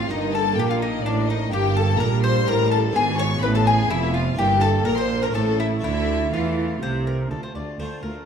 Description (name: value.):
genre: classical, baroque-style concerto movement with solo episodes.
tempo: 125 BPM.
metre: 3/4.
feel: straight.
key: D minor.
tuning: A4 = 440 Hz.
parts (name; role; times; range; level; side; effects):
mandolin; melody; 0.0-8.3 s; D4 to D5; -27 LUFS; left 3 dB; none.
rich chamber violin section; melody; 0.0-8.3 s; D5 to C#6; -30 LUFS; left 7 dB; none.
rich symphonic violin section; second line; 0.0-8.3 s; D4 to C#5; -27 LUFS; left 4 dB; none.
harpsichord; accompaniment; 0.0-8.3 s; D2 to E#4; -32 LUFS; equal; none.
rich chamber viola section; accompaniment; 0.0-8.2 s; G3 to C4; -29 LUFS; right 3 dB; none.
clear chamber double bass section; bass; 0.0-8.1 s; E#1 to E2; -26 LUFS; right 4 dB; none.
rich studio cello section; bass; 0.0-8.1 s; D2 to E3; -25 LUFS; right 2 dB; none.
room: moderate recital hall reverb, RT60 1.5 s.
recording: dark, warm production.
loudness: -19 LUFS.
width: side -7 dB against mid.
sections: 0.0-7.3 A section.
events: none.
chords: 0.1 Eb/G; 1.5 Edim/G; 3.0 G#dim7; 4.4 Em7b5/G; 5.3 A; 5.8 Dm.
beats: | 0.10 0.58 1.05 | 1.52 2.00 2.48 | 2.95 3.43 3.90 | 4.38 4.86 5.34 | 5.83 6.33 6.82 | 7.31 7.79.